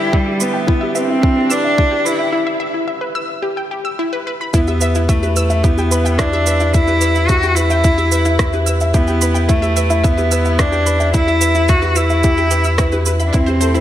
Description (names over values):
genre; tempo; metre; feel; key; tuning
piano and strings electronica; 109 BPM; 4/4; straight; E minor; A4 = 441 Hz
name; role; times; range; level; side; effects
rich cello; melody; 0.0-13.8 s; G3 to F#4; -18 LUFS; equal; tape echo
rich chamber string section; sustained chords; 0.0-13.8 s; C3 to G4; -28 LUFS; right 2 dB; none
felt-muted upright piano; riff; 0.0-13.8 s; E4 to E5; -21 LUFS; equal; tape echo
wide unison pluck; arpeggios; 0.1-13.8 s; E4 to E6; -24 LUFS; left 2 dB; sidechain pumping, tape echo
electronic kick drum; drums; 0.1-13.5 s; none; -15 LUFS; equal; none
electronic shaker and rim click; drums; 0.4-13.8 s; none; -23 LUFS; right 4 dB; none
warm sub bass; bass; 4.5-13.8 s; E2; -18 LUFS; equal; sidechain pumping
room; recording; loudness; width
light reverb, small room ambience; none; -13 LUFS; side -12 dB against mid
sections
0.0-4.5 A section; 4.5-13.8 B section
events
build-up 0.0-4.5; filter sweep on synth arpeggio sound 0.0-4.5; break 2.3-4.5; drop 4.5-13.8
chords
0.0 Em